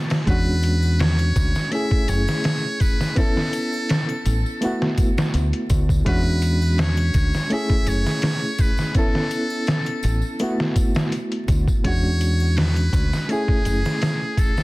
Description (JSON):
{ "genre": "trip hop", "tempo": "83 BPM", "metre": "4/4", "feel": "swing 54% on 16ths", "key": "F# minor", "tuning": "A4 = 440 Hz", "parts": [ { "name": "bright reed electric piano", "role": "accompaniment", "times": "0.0-14.6 s", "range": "G#3 to A4", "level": "-25 LUFS", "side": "equal", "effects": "fast tremolo, harmonic tremolo, tape echo" }, { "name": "trip hop sampler-style drum kit", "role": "drums", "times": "0.1-14.6 s", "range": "hi-hat, kick drum, snare drum", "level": "-21 LUFS", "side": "equal", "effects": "small room ambience" }, { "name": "tambourine and triangle", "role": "percussion", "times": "0.1-14.6 s", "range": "none", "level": "-43 LUFS", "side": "left 2 dB", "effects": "none" }, { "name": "trumpet with metal mute", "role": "melody", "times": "0.3-14.6 s", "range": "G#4 to E5", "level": "-28 LUFS", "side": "equal", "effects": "tape echo" }, { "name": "deep dub fingered electric bass", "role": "bass", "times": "0.3-13.8 s", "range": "F#1 to E2", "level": "-20 LUFS", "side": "equal", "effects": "none" } ], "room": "little or no reverb", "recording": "dense, heavily limited modern master, vinyl crackle", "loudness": "-18 LUFS", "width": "side -21 dB against mid", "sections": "0.0-14.6 A section", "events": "break 0.0", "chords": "0.3 E13; 1.7 F#m9 (rootless); 3.2 Aadd9; 4.6 D6; 6.1 E13; 7.5 F#m9 (rootless); 9.0 Aadd9; 10.4 D6 (rootless); 11.8 E13; 13.3 F#m9" }